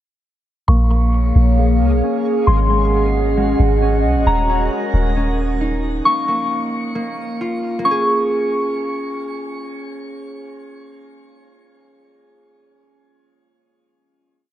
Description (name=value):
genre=hip hop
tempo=134 BPM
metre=4/4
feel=half-time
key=Bb minor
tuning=A4 = 440 Hz
part: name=soft synth bell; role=melody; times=0.7-9.2 s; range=Bb5 to Db6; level=-21 LUFS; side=left 2 dB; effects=chorus, low-pass filter, tape echo
part: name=warbly tape-like pad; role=sustained chords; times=1.1-6.0 s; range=Bb3 to Gb5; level=-21 LUFS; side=equal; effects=chorus, built-in reverb, low-pass filter
part: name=concert harp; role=arpeggios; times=0.7-12.2 s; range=Ab3 to Ab4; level=-23 LUFS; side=right 1 dB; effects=low-pass filter, tape echo
part: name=soft 808-style bass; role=bass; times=0.7-6.0 s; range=Eb1 to Db2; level=-16 LUFS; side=equal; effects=none
part: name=backwards swelling texture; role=texture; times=1.0-4.2 s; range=Ab3 to Db5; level=-32 LUFS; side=equal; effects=built-in reverb
room=light reverb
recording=none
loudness=-15 LUFS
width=side -12 dB against mid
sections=0.7-7.8 breakdown; 7.8-11.4 final chord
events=filter sweep 0.7-7.8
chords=0.7 Bbm7; 2.5 Ab7sus4; 4.3 Ebm7; 6.1 Bbm; 7.8 Bbm7